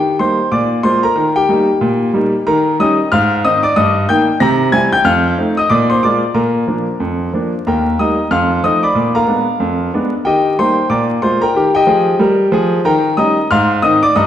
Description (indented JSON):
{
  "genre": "jazz, stride piano",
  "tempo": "185 BPM",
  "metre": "4/4",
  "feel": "swing 60% on 8ths",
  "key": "Eb major",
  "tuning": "A4 = 440 Hz",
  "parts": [
    { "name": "clear concert grand piano", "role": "solo", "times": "0.0-14.3 s", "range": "Eb2 to Bb6", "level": "-11 LUFS", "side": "equal", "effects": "none" }
  ],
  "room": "wet recital hall reverb, RT60 1.2 s",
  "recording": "recorded in a church or concert hall, vinyl crackle",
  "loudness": "-11 LUFS",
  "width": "side -10 dB against mid",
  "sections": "0.0-7.7 A section; 7.7-14.3 A section",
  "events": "none",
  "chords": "0.0 Eb; 0.5 Bb7; 1.2 Eb; 2.5 Eb7; 3.1 Ab6; 3.8 Eb/G; 4.4 C7; 5.1 F7; 5.7 Bb7; 6.4 Bb; 7.7 Eb; 8.3 F7; 9.0 Bb7b9; 10.3 Eb; 10.9 Bb7; 11.6 Eb; 12.9 Eb7; 13.5 Ab6",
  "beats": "0.20 0.52 0.85 | 1.17 1.49 1.82 2.14 | 2.47 2.79 3.11 3.44 | 3.76 4.09 4.41 4.74 | 5.06 5.38 5.71 6.03 | 6.36 6.68 7.00 7.33 | 7.65 7.98 8.30 8.63 | 8.95 9.28 9.60 9.93 | 10.25 10.58 10.90 11.23 | 11.55 11.88 12.20 12.53 | 12.85 13.18 13.50 13.83 | 14.15"
}